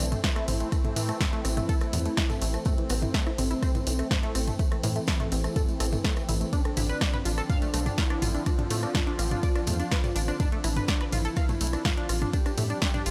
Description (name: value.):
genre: melodic techno.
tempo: 124 BPM.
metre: 4/4.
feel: straight.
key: A minor.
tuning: A4 = 440 Hz.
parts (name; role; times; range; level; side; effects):
fat analog lead; melody; 0.0-13.1 s; E3 to G4; -37 LUFS; equal; ensemble chorus, sidechain pumping, tape echo.
sweeping resonant pad; sustained chords; 0.0-13.1 s; D3 to C4; -40 LUFS; equal; chorus, sidechain pumping.
tight sequenced synth; arpeggios; 0.0-13.1 s; E3 to F5; -37 LUFS; equal; chorus, sidechain pumping, tape echo.
tight sequencer bass; bass; 0.0-13.1 s; A1 to A2; -31 LUFS; equal; tube saturation, sidechain pumping.
deep house drum kit; drums; 0.0-13.1 s; hi-hat, ride cymbal, rim click, snare drum, toms; -34 LUFS; equal; none.
tambourine; percussion; 0.0-13.1 s; none; -43 LUFS; equal; none.
electronic kick drum; drums; 0.2-12.9 s; none; -30 LUFS; equal; none.
room: little or no reverb.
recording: dry, gritty hardware recording.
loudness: -27 LUFS.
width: mono.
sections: 0.0-13.1 A section.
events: none.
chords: 0.0 Am; 6.5 Dm7/A.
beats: 0.24 | 0.72 1.21 1.69 2.17 | 2.66 3.14 3.62 4.11 | 4.59 5.08 5.56 6.04 | 6.53 7.01 7.50 7.98 | 8.46 8.95 9.43 9.91 | 10.40 10.88 11.37 11.85 | 12.33 12.82.